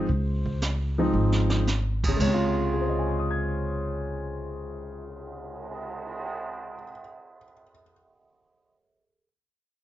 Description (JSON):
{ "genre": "jazz piano trio", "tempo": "114 BPM", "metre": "4/4", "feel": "swing 69% on 8ths", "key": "Db major", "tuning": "A4 = 440 Hz", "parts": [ { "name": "warm grand piano", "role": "melody", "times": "0.0-7.9 s", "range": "C3 to Ab6", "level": "-29 LUFS", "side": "equal", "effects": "plate reverb" }, { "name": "upright bass", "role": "bass", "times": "0.0-6.8 s", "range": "Ab1 to Db2", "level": "-27 LUFS", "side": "equal", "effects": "none" }, { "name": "jazz brush drum kit", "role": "drums", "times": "0.1-6.3 s", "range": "brushed snare drum, crash cymbal, cymbal swell, hi-hat, kick drum, snare drum", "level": "-33 LUFS", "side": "right 2 dB", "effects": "none" } ], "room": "light reverb", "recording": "nothing above 7.7 kHz", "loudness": "-24 LUFS", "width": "side -13 dB against mid", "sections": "0.0-2.2 A section; 2.2-6.4 B section", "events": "drum fill 1.1-1.7", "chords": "0.0 Dbmaj7" }